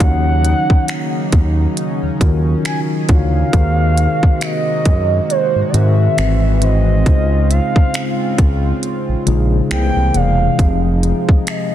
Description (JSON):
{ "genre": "contemporary R&B", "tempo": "68 BPM", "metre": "4/4", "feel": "swing 58% on 16ths", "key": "Db major", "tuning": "A4 = 440 Hz", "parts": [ { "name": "gliding portamento lead", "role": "melody", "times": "0.0-11.7 s", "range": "C5 to Ab5", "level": "-21 LUFS", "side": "right 2 dB", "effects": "chorus, phaser, ping-pong delay" }, { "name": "mellow tine electric piano", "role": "accompaniment", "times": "0.0-11.7 s", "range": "Ab2 to F5", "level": "-20 LUFS", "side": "left 2 dB", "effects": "medium stereo tremolo" }, { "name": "chorused pulse-width pad", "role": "sustained chords", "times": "0.0-11.7 s", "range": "C3 to Gb4", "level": "-23 LUFS", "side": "right 1 dB", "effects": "none" }, { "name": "smooth synth bass", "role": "bass", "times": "0.0-11.1 s", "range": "E1 to Ab2", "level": "-15 LUFS", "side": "equal", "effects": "none" }, { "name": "trap drum kit", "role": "drums", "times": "0.0-11.7 s", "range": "finger snaps, hi-hat, kick drum", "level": "-15 LUFS", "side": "equal", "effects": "vintage 12-bit sampler grit, soft clipping on snare" } ], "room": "little or no reverb", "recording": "dense, heavily limited modern master", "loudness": "-12 LUFS", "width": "side -11 dB against mid", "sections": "0.0-11.7 A section", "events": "kick muted 8.8-10.6", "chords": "0.0 Ebm7; 3.5 Ab9/Eb; 6.2 Ab7alt; 7.1 Dbmaj7; 9.7 C7b13; 10.6 Fm7" }